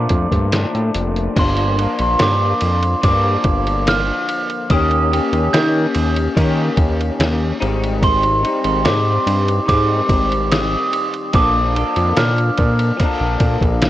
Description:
indie pop, bedroom pop; 72 BPM; 4/4; straight; G minor; A4 = 443 Hz
glockenspiel with rubber mallets; melody; 0.0-13.8 s; C6 to G6; -20 LUFS; right 2 dB; wide subtle chorus, tape echo
electric guitar through a small old amp; accompaniment; 0.0-13.9 s; G2 to A4; -21 LUFS; left 3 dB; analog chorus, vibrato effect
fat analog bass; bass; 0.0-13.9 s; F1 to Eb3; -18 LUFS; equal
lo-fi sampler-style drum kit; drums; 0.1-13.9 s; crash cymbal, hi-hat, kick drum, ride cymbal, snare drum; -20 LUFS; equal
light reverb; worn, warbling old tape, cassette tape, warbly pitch drift; -14 LUFS; side -14 dB against mid
0.0-1.4 A section; 1.4-13.9 B section
0.0 Bbmaj7; 1.4 Gm7; 4.7 Eb7; 7.6 Abmaj7; 11.3 Bbmaj7

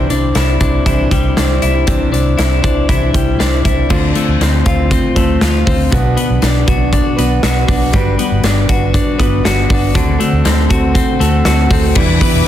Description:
jangly indie pop; 119 BPM; 4/4; straight; A4 = 440 Hz
fingerpicked plugged-in steel-string acoustic guitar; accompaniment; 0.0-12.5 s; B2 to C5; -19 LUFS; right 4 dB
twelve-string electric guitar; arpeggios; 0.0-12.5 s; B2 to F#4; -16 LUFS; left 5 dB; spring reverb
vintage muted fingered electric bass; bass; 0.0-12.4 s; E1 to D2; -16 LUFS; right 1 dB
big rock drum kit; drums; 0.1-12.3 s; crash cymbal, hi-hat, kick drum, snare drum; -16 LUFS; equal
rich symphonic string section; sustained chords; 12.0-12.5 s; G4 to D6; -21 LUFS; left 2 dB
moderate club reverb, RT60 0.8 s; dense, heavily limited modern master; -11 LUFS; side -11 dB against mid
0.0-3.9 A section; 3.9-12.0 B section
0.0 Cadd9; 3.9 Dm7; 5.9 Bm; 7.9 Gmaj7; 10.0 D7; 12.0 Em7

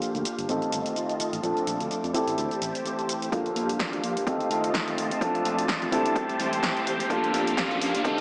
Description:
filtered disco house; 127 BPM; 4/4; swing 56% on 16ths; G minor; A4 = 441 Hz
dark grand piano; accompaniment; 0.0-8.2 s; Bb3 to A4; -32 LUFS; equal; phaser, sidechain pumping, low-pass filter
phased string machine; sustained chords; 0.0-8.2 s; D4 to A5; -35 LUFS; equal; ensemble chorus, phaser, sidechain pumping, low-pass filter
electric guitar at the edge of break-up; riff; 0.0-8.2 s; Eb3 to G4; -34 LUFS; equal; sidechain pumping, low-pass filter
punchy analog drum machine; drums; 0.0-8.2 s; hi-hat, shaker, snare drum; -35 LUFS; equal; sidechain pumping on hats, sidechain pumping on perc
modern bright fingered electric bass; bass; 0.1-8.2 s; G1 to F2; -40 LUFS; equal
electronic kick drum; drums; 3.3-8.2 s; -34 LUFS; equal; high-pass filter on kick, high-pass filter on room
riser; sound effects; 6.1-8.2 s; -37 LUFS; equal
wet lush hall reverb, RT60 1.6 s; small speaker sound; -27 LUFS; mono
0.0-3.3 A section; 3.3-8.2 B section
filter sweep 0.0-3.3, 3.3-8.2; build-up 3.3-8.2; riser 6.1-8.2
0.5 F7; 1.4 Bbmaj7; 2.1 Am7; 3.3 Gm7; 4.3 F7; 5.2 Bbmaj7; 5.9 Am7; 7.1 Gm7

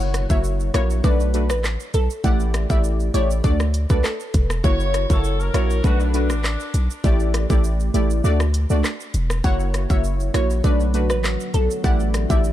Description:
dancehall; 100 BPM; 4/4; straight; B minor; A4 = 440 Hz
synth brass stab; accompaniment; 0.0-12.5 s; A3 to D5; -25 LUFS; equal; chorus
hard-hitting 808-style bass; bass; 0.0-12.5 s; E1 to D2; -20 LUFS; equal
island pop drum kit; drums; 0.0-12.5 s; handclaps, hi-hat, kick drum, rim click, shaker; -22 LUFS; equal
glassy wavetable pluck; melody; 0.3-4.5, 9.4-12.4 s; A4 to F#5; -28 LUFS; equal; chorus, tape echo
mellow horn section; second line; 4.6-7.2 s; D4 to C#5; -29 LUFS; equal; tape echo
deep dark ambient pad; sustained chords; 10.2-12.5 s; C#3 to G4; -33 LUFS; equal; chorus, built-in reverb, sidechain pumping
little or no reverb; dark, warm production; -18 LUFS; side -13 dB against mid
0.0-12.5 A section
kick muted 8.2-9.4
0.0 F#7; 1.0 Bm7; 2.2 A7sus4; 3.4 D; 4.6 F#7; 5.8 Bm7; 7.0 A7sus4; 8.2 D; 9.4 F#7; 10.6 Bm7; 11.8 A7sus4

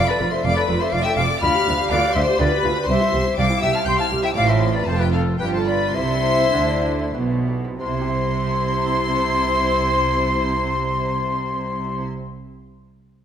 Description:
classical, baroque-style concerto movement with solo episodes; 88-124 BPM; 3/4; straight; C major; A4 = 439 Hz
rich studio violin section; melody; 0.0-12.1 s; F5 to G6; -27 LUFS; left 3 dB
silver concert flute; melody; 0.0-12.0 s; A4 to C6; -23 LUFS; left 2 dB
lute; accompaniment; 0.0-12.3 s; D2 to E5; -32 LUFS; left 1 dB
warm studio viola section; accompaniment; 0.0-12.0 s; E4 to A4; -28 LUFS; right 2 dB
clear chamber double bass section; bass; 0.0-12.0 s; F1 to D2; -26 LUFS; right 3 dB
warm chamber cello section; bass; 0.0-12.0 s; C2 to D3; -25 LUFS; right 2 dB
rich chamber violin section; second line; 0.1-12.0 s; F4 to G5; -26 LUFS; left 3 dB
moderate scoring stage reverb, RT60 1.6 s; -18 LUFS; side -8 dB against mid
0.0-7.8 A section; 7.8-11.8 B section
slowing down 3.6-7.8
0.0 Dm/F; 1.4 G7/D; 2.9 C; 4.4 F/A; 5.4 G7; 6.0 C

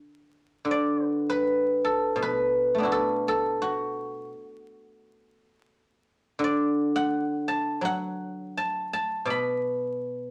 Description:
chinese traditional, Chinese solo plucked strings; 84 BPM; 4/4; uneven beats, rubato; D gong mode; A4 = 440 Hz
guzheng; solo; 0.6-10.3 s; B2 to D6; -27 LUFS; equal
moderate studio reverb, RT60 0.7 s; vinyl crackle; -27 LUFS; mono
0.7-10.3 A section

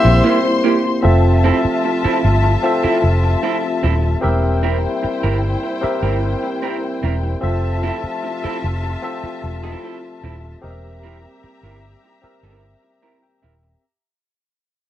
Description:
soul; 75 BPM; 4/4; straight; F major; A4 = 442 Hz
breathy alto saxophone; melody; 0.0-0.6 s; E5; -18 LUFS; left 1 dB
muted studio string section; second line; 0.0-13.8 s; E4 to C6; -24 LUFS; left 4 dB
barky tine electric piano; accompaniment; 0.0-13.9 s; Bb3 to Bb5; -21 LUFS; left 1 dB; wide subtle chorus
dark French horn section; sustained chords; 0.0-13.8 s; C3 to E5; -29 LUFS; left 3 dB
electric guitar through a small old amp; riff; 0.0-13.7 s; Bb3 to Bb4; -23 LUFS; right 8 dB
vintage muted fingered electric bass; bass; 0.0-13.7 s; Eb1 to Bb1; -17 LUFS; equal
little or no reverb; dry, close 1970s-style studio recording; -15 LUFS; side -12 dB against mid
0.0-1.0 A section; 1.0-13.8 B section
fade-out 1.0-13.8; tine electric piano fill 12.6-13.8
0.0 C7; 1.0 Fmaj7; 4.2 C7/E; 7.4 Fmaj7; 10.6 C7/E

